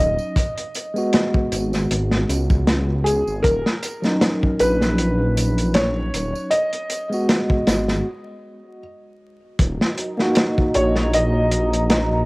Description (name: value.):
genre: trip hop.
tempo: 78 BPM.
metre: 4/4.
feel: swing 55% on 16ths.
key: Eb minor.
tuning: A4 = 439 Hz.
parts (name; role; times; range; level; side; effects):
felt-muted upright piano; melody; 0.0-12.3 s; Ab4 to Eb5; -23 LUFS; equal; cassette tape, tape echo.
tine electric piano; accompaniment; 0.0-12.3 s; Gb3 to Gb4; -24 LUFS; equal; tremolo, cassette tape.
dark detuned saw bass; bass; 0.0-12.3 s; Eb1 to Db2; -21 LUFS; equal; none.
tambourine; percussion; 0.2-8.0 s; none; -38 LUFS; right 5 dB; none.
crunchy breakbeat drum kit; drums; 0.4-12.1 s; hi-hat, kick drum, snare drum; -20 LUFS; equal; cassette tape.
dark analog pad; sustained chords; 9.6-12.3 s; Gb4 to Bb5; -25 LUFS; equal; chorus, cassette tape.
room: light reverb, studio reverb.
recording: home recording on cassette, vinyl crackle.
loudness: -17 LUFS.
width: side -26 dB against mid.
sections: 0.0-9.6 A section; 9.6-12.3 B section.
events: break 8.1-9.6.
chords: 0.4 Abm7; 3.4 Ebm7; 6.5 Abm7; 9.6 Ebm.